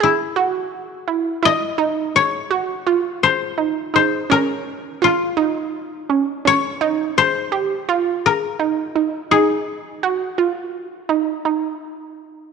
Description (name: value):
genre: progressive instrumental, progressive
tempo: 168 BPM (eighths)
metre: 7/8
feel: straight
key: Ab mixolydian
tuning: A4 = 441 Hz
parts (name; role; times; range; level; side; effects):
- koto; melody; 0.0-11.3 s; E4 to Eb5; -18 LUFS; left 7 dB; cassette tape
- analog pluck; arpeggios; 0.0-11.7 s; Db4 to G#4; -20 LUFS; right 8 dB; chorus, cassette tape
room: moderate lush hall reverb, RT60 2.5 s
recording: home recording on cassette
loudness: -17 LUFS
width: side -5 dB against mid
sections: 0.0-11.8 A section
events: none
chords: 0.0 E; 1.8 Ebm13; 4.3 Bbm; 6.8 Eb; 9.3 Ab5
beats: 0.01 0.37 0.73 1.09 1.44 | 1.80 2.16 2.52 2.88 3.23 3.59 3.95 | 4.31 4.67 5.03 5.38 5.74 6.10 6.46 | 6.81 7.17 7.53 7.89 8.24 8.60 8.96 | 9.32 9.67 10.03 10.39 10.75 11.10 11.46